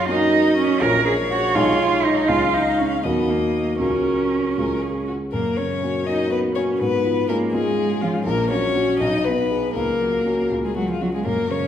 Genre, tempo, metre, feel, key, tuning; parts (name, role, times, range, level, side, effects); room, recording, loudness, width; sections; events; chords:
quick classical-period movement for piano trio; 81 BPM (dotted quarters); 6/8; straight; F# major; A4 = 439 Hz
rich violin; melody; 0.0-11.7 s; E#4 to E#5; -24 LUFS; left 5 dB
rich cello; second line; 0.0-11.7 s; E#3 to A#4; -22 LUFS; right 3 dB
warm grand piano; accompaniment; 0.0-11.7 s; A#1 to C#5; -22 LUFS; left 1 dB
wet recital hall reverb, RT60 1.4 s; heard from further back in the room; -18 LUFS; side -9 dB against mid
0.0-5.3 A section; 5.3-11.7 B section
0.0 F#; 0.8 A#m; 1.6 G#m/B; 2.3 C#; 3.0 D#m; 3.8 F#/C#; 4.6 C#; 5.3 F#; 6.8 C#7/G#; 8.3 F#/A#; 9.0 G#m/B; 9.8 F#/C#; 10.5 C#